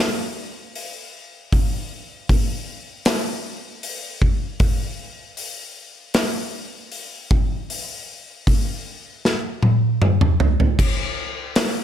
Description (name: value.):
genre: rock.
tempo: 78 BPM.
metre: 4/4.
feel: straight.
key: none.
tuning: none.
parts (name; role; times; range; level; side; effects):
big rock drum kit; drums; 0.8-11.7 s; crash cymbal, hi-hat, kick drum, snare drum, toms; -20 LUFS; equal; none.
room: light reverb.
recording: none.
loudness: -19 LUFS.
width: side -10 dB against mid.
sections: 0.0-10.8 A section; 10.8-11.8 B section.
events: half time 0.0-10.8; drum fill 9.2-10.8.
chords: none.